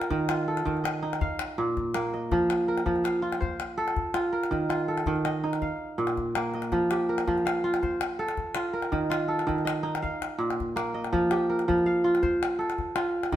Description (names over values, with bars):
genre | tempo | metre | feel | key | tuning
west african traditional, West African string and xylophone music | 109 BPM (dotted quarters) | 12/8 | straight | F mixolydian | A4 = 440 Hz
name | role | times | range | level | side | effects
kora | arpeggios | 0.0-13.4 s | Bb2 to F5 | -26 LUFS | right 1 dB | none
calabash | percussion | 0.0-13.4 s | none | -33 LUFS | left 4 dB | none
room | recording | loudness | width
wet stone room reverb, RT60 1.2 s | band playing live in one room | -25 LUFS | side -12 dB against mid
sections
0.0-13.4 A section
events
none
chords
0.1 Eb5; 1.2 Bb5; 2.3 F; 4.5 Eb5; 5.6 Bb5; 6.7 F; 8.9 Eb5; 10.0 Bb5; 11.1 F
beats
| 0.10 0.66 1.21 1.76 | 2.31 2.87 3.42 3.97 | 4.52 5.07 5.62 6.17 | 6.72 7.28 7.83 8.38 | 8.93 9.48 10.03 10.58 | 11.13 11.68 12.23 12.78 | 13.33